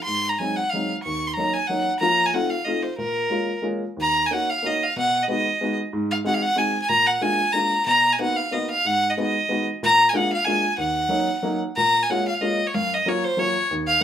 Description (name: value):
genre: musette waltz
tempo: 185 BPM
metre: 3/4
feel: swing 55% on 8ths, rubato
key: Bb minor, Eb minor from 4.0 s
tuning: A4 = 441 Hz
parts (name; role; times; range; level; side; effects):
- bright violin; melody; 0.0-14.0 s; Bb4 to Db6; -20 LUFS; equal; none
- dark upright piano; accompaniment; 0.1-14.0 s; Eb2 to Gb4; -26 LUFS; left 1 dB; none
room: moderate studio reverb, RT60 0.5 s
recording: band playing live in one room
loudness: -19 LUFS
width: side -9 dB against mid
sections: 0.0-4.0 A section; 4.0-11.8 B section; 11.8-14.0 A section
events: none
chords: 0.1 Ab7; 1.1 Ebm7; 2.0 Bbm/F; 2.3 F7; 3.0 Bbm7; 4.0 Ebm7; 5.0 B6; 5.9 Ab7; 6.9 Bb7; 7.9 Bmaj7; 8.9 Abm7; 9.8 Bb7; 10.8 Ebm7; 11.8 Bbm7; 12.7 Gbmaj7